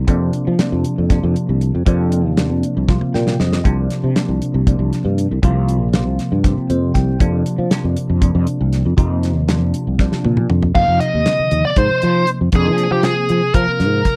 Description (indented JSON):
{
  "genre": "electric jazz fusion",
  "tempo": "236 BPM (eighths)",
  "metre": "7/8",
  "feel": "straight",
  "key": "unclear",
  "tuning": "A4 = 440 Hz",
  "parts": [
    { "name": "sustaining fretless electric bass", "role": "bass", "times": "0.0-14.0 s", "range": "Bb1 to F3", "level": "-20 LUFS", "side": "equal", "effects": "analog chorus" },
    { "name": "bell-like tine electric piano", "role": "accompaniment", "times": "0.1-14.2 s", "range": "C3 to G5", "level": "-23 LUFS", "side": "equal", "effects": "phaser" },
    { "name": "damped 70s drum kit", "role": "drums", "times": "0.1-14.2 s", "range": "crash cymbal, hi-hat, kick drum, snare drum, toms", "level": "-20 LUFS", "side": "equal", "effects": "none" },
    { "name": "bluesy overdriven lead guitar", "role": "melody", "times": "10.8-14.2 s", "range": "G4 to F5", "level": "-19 LUFS", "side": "equal", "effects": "distortion, slapback echo" }
  ],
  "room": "little or no reverb",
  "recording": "dry, close 1970s-style studio recording, faint mains hum",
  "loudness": "-17 LUFS",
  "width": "mono",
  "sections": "0.0-10.8 A section; 10.8-14.2 B section",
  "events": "drum fill 2.9-3.6, 10.0-10.8; tine electric piano fill 2.9-3.6, 6.4-7.2",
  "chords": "0.1 F7sus4; 3.6 C9sus4; 7.2 F7sus4; 10.8 F7(no3); 12.5 Dm7b5/F",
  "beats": "| 0.09 0.34 0.60 0.85 1.11 1.36 1.61 | 1.87 2.12 2.38 2.63 2.89 3.14 3.40 | 3.65 3.90 4.16 4.41 4.67 4.92 5.17 | 5.43 5.68 5.94 6.19 6.44 6.70 6.95 | 7.21 7.46 7.71 7.97 8.22 8.47 8.73 | 8.98 9.23 9.49 9.74 10.00 10.25 10.50 | 10.76 11.01 11.27 11.52 11.77 12.03 12.28 | 12.53 12.79 13.04 13.29 13.55 13.80 14.05"
}